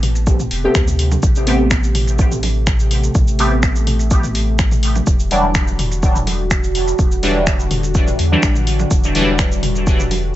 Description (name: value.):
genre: dub techno.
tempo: 125 BPM.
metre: 4/4.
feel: straight.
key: A dorian.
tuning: A4 = 440 Hz.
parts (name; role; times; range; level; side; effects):
warbly tape-like pad; sustained chords; 0.0-10.4 s; C3 to G4; -24 LUFS; equal; chorus, built-in reverb, sidechain pumping.
pure sine sub bass; bass; 0.0-10.4 s; E1 to E2; -19 LUFS; equal; sidechain pumping.
deep house drum kit; drums; 0.0-10.2 s; cabasa, finger snaps, hi-hat; -23 LUFS; equal; none.
electronic toms and congas; percussion; 0.0-10.2 s; none; -26 LUFS; right 1 dB; sidechain pumping on toms, sidechain pumping on perc.
electronic kick drum; drums; 0.3-10.0 s; none; -16 LUFS; equal; none.
resonant sweep polysynth; stabs; 0.6-9.3 s; E3 to G4; -20 LUFS; equal; chorus, phaser, sidechain pumping, dub echo.
room: digital ambience.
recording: nothing above 8.0 kHz.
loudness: -13 LUFS.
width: side -14 dB against mid.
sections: 0.0-10.4 A section.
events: none.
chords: 0.0 Am9; 5.1 Em9.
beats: 0.27 0.75 | 1.23 1.71 2.19 2.67 | 3.15 3.63 4.11 4.59 | 5.07 5.55 6.03 6.51 | 6.99 7.47 7.95 8.43 | 8.91 9.39 9.87 10.35.